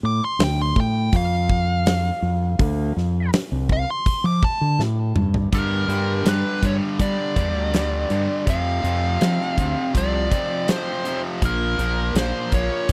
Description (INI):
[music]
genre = blues rock power trio and southern rock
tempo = 82 BPM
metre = 4/4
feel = straight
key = unclear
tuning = A4 = 442 Hz
[part]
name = growling fingered electric bass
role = bass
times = 0.0-12.9 s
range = Bb1 to G3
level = -24 LUFS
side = equal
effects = overdrive
[part]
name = nasal lead guitar with a parked wah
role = melody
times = 0.1-12.9 s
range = Bb4 to D6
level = -28 LUFS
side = equal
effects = overdrive
[part]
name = huge arena drum kit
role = drums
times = 0.4-12.9 s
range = hi-hat, kick drum, snare drum, toms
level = -25 LUFS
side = equal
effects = none
[part]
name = distorted electric guitar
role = riff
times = 5.5-12.9 s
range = F2 to Bb3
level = -28 LUFS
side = equal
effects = overdrive
[sound]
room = little or no reverb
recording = dry, close 1970s-style studio recording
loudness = -21 LUFS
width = mono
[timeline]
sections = 0.0-5.5 A section; 5.5-12.9 B section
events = lead electric guitar solo 0.0-5.5; drum fill 4.8-5.5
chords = 0.0 F; 5.5 G5; 8.5 F5; 11.4 Bb5